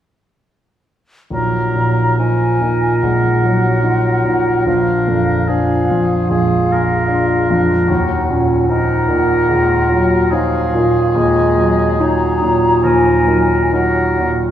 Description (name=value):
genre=classical, romantic movement for piano and orchestra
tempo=73 BPM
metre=4/4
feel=uneven beats, rubato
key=Eb minor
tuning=A4 = 441 Hz
part: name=warm concert grand piano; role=melody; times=1.3-14.5 s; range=Bb1 to Eb4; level=-14 LUFS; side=equal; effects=none
part: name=hollow concert flute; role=second line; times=1.3-14.3 s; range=Eb5 to Bb5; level=-21 LUFS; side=equal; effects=none
part: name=warm clarinet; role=second line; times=1.3-14.3 s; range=Db4 to Gb4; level=-24 LUFS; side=left 3 dB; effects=none
part: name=warm oboe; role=second line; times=1.3-14.3 s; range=Ab4 to Bb4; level=-21 LUFS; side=equal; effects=none
part: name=dark bassoon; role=accompaniment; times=1.3-14.3 s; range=D3 to Ab3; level=-23 LUFS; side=equal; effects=none
room=wet scoring stage reverb, RT60 1.9 s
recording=heard from further back in the room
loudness=-12 LUFS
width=side -10 dB against mid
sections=1.3-14.5 A section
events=none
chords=1.3 Ebm/Bb; 4.7 Bb7; 7.9 Ebm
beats=| 1.33 2.19 3.04 3.86 | 4.67 5.49 6.31 7.11 | 7.90 8.69 9.50 10.32 | 11.16 12.00 12.84 13.74